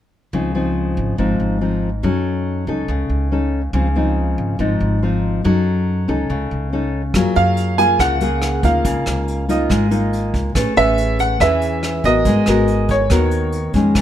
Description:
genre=bossa nova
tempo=141 BPM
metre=4/4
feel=straight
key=Db major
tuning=A4 = 439 Hz
part: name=nylon-string guitar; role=accompaniment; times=0.3-14.0 s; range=Ab2 to B4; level=-18 LUFS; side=left 2 dB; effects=none
part: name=upright bass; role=bass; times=0.3-14.0 s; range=Ab1 to Gb2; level=-21 LUFS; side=right 1 dB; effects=none
part: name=vintage brush drum kit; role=drums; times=7.1-14.0 s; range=hi-hat, kick drum, rim click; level=-24 LUFS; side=right 1 dB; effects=none
part: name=warm baby grand piano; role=melody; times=7.4-13.7 s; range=Db5 to Ab5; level=-19 LUFS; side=right 2 dB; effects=none
room=light reverb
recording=none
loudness=-15 LUFS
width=side -11 dB against mid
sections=0.3-7.1 A section; 7.1-14.0 B section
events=none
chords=0.3 Dbmaj9; 2.0 Gbm6; 3.7 Dbmaj9; 5.4 Gbm6; 7.1 Gbmaj9; 8.8 Db69; 10.6 Amaj9; 12.3 Abm9

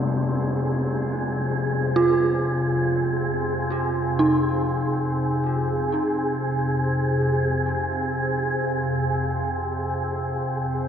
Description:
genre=dark ambient drone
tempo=free time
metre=none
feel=none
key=F minor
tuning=A4 = 440 Hz
part: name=dark detuned synth bell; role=arpeggios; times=0.0-10.9 s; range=Eb4 to Ab4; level=-25 LUFS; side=right 2 dB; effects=chorus, tape echo
part: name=organ-like drone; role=drone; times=0.0-10.9 s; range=F2 to C3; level=-25 LUFS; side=left 1 dB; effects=ensemble chorus, built-in reverb
part: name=wind-like tuned noise texture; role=texture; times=0.0-10.9 s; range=Ab4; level=-27 LUFS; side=equal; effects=built-in reverb, wide subtle chorus
room=wet lush hall reverb, RT60 2.7 s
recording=dreamy mix soaked in reverb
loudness=-21 LUFS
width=side -8 dB against mid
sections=0.0-10.9 A section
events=none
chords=0.0 Fm7

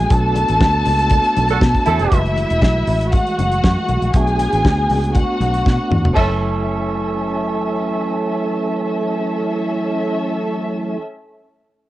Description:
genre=disco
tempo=119 BPM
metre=4/4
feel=straight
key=F# minor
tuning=A4 = 437 Hz
part: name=dark studio string section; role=second line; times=0.0-11.0 s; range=C#4 to A5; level=-20 LUFS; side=left 1 dB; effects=cassette tape
part: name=percussive tonewheel organ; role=sustained chords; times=0.0-11.0 s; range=E3 to G#5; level=-23 LUFS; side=equal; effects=fast rotary speaker, low-pass filter, cassette tape
part: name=fingered electric bass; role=bass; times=0.0-11.0 s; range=E1 to B2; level=-19 LUFS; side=equal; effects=none
part: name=damped 70s drum kit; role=drums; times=0.1-6.3 s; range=crash cymbal, hi-hat, kick drum, snare drum, toms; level=-17 LUFS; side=equal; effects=cassette tape
part: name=congas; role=percussion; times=0.1-6.4 s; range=none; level=-30 LUFS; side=left 6 dB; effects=none
part: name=mellow horn section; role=stabs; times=1.5-2.2, 6.2-11.0 s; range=E3 to A4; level=-23 LUFS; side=right 7 dB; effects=low-pass filter, cassette tape
room=light reverb, studio ambience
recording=home recording on cassette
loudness=-15 LUFS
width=side -15 dB against mid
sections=0.0-2.1 A section; 2.1-6.2 B section; 6.2-10.2 C section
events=band accent 0.1-2.1; filter sweep 2.1-6.2; drum fill 5.7-6.2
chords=0.1 Bm7; 2.1 F#m9; 4.1 Bm7; 6.2 F#m9

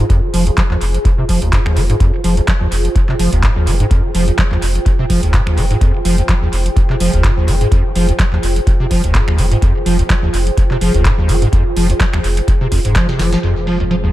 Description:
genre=acid house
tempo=126 BPM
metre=4/4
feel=swing 55% on 16ths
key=F minor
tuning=A4 = 440 Hz
part: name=acid bass, square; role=riff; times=0.0-14.1 s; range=Eb2 to F3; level=-17 LUFS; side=equal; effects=overdrive, ensemble chorus, cassette tape, analog delay
part: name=warm sub bass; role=bass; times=0.0-14.1 s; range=F1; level=-17 LUFS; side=equal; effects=sidechain pumping
part: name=ethereal airy pad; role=texture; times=0.0-14.1 s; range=F4 to Ab5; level=-22 LUFS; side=right 1 dB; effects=ensemble chorus, built-in reverb, sidechain pumping
part: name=booming analog drum machine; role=drums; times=0.1-14.0 s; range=finger snaps, handclaps, hi-hat, snare drum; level=-22 LUFS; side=right 1 dB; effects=low-pass filter on hats, low-pass filter on snare, tape echo
part: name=electronic kick drum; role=drums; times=0.1-13.1 s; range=none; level=-14 LUFS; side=equal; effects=none
part: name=dark analog pad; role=sustained chords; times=13.4-14.1 s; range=Ab3 to F4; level=-26 LUFS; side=right 2 dB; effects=wide subtle chorus, sidechain pumping
room=little or no reverb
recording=echo-heavy mix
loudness=-12 LUFS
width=side -15 dB against mid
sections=0.0-13.4 A section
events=drum fill 13.1-13.4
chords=0.0 Fm

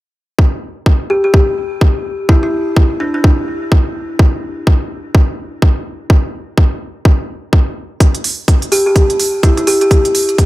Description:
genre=bass house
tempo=126 BPM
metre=4/4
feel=swing 59% on 16ths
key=unclear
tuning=A4 = 439 Hz
part: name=electronic kick drum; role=drums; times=0.4-10.5 s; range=none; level=-11 LUFS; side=equal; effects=none
part: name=kalimba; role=melody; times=1.1-3.2, 8.7-9.9 s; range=D4 to G4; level=-15 LUFS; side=equal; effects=tape echo
part: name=electronic hi-hat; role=drums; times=8.0-10.5 s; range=none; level=-19 LUFS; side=right 4 dB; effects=none
room=little or no reverb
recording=none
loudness=-11 LUFS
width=side -18 dB against mid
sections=0.4-10.5 A section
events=none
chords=none

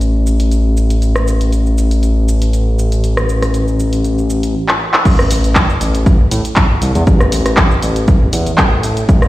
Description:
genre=deep house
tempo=119 BPM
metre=4/4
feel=swing 54% on 16ths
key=unclear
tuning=A4 = 440 Hz
part: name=smooth synth bass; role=bass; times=0.0-9.3 s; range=A1 to A2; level=-13 LUFS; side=equal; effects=tube saturation, sidechain pumping
part: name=punchy analog drum machine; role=drums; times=0.0-9.3 s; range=crash cymbal, handclaps, hi-hat, rim click, shaker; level=-17 LUFS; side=equal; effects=vintage 12-bit sampler grit
part: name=electronic kick drum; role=drums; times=5.1-9.2 s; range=none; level=-11 LUFS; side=equal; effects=vintage 12-bit sampler grit
room=little or no reverb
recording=played on a big sound system in a bare room, stone room reverb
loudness=-11 LUFS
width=side -16 dB against mid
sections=0.0-5.1 A section; 5.1-9.3 B section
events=drum fill 4.7-5.1; drop 5.1-9.3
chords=none

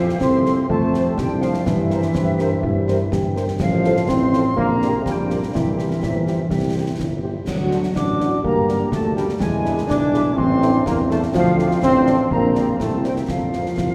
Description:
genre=military-style march for wind band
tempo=124 BPM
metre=2/4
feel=straight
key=F major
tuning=A4 = 440 Hz
part: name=warm trumpet section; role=melody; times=0.0-13.6 s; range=Bb4 to D5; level=-48 LUFS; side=equal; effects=none
part: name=small flute group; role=second line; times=0.0-13.9 s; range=E5 to D6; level=-30 LUFS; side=equal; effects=none
part: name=mellow French horn section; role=accompaniment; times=0.0-13.6 s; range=D4 to C5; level=-32 LUFS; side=equal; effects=none
part: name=dark trombone section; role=sustained chords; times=0.0-13.9 s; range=E3 to D4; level=-23 LUFS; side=equal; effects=none
part: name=mellow tuba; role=bass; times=0.0-13.9 s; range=G1 to G2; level=-26 LUFS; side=equal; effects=none
part: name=concert snare drum, concert bass drum and clash cymbals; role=drums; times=0.1-13.9 s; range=none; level=-29 LUFS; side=equal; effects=none
part: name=warm euphonium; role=second line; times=0.2-13.9 s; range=A3 to G4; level=-31 LUFS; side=equal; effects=none
room=wet cathedral reverb, RT60 5.2 s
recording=recorded in a church or concert hall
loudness=-19 LUFS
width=mono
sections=0.0-13.9 A section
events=none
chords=0.0 F; 1.7 C7/G; 3.6 F/A; 4.6 Gm/Bb; 5.5 C; 7.5 D; 8.4 Gm; 9.4 E7; 10.4 Am; 11.3 Dm; 12.3 Gm/Bb; 12.8 C; 13.3 F

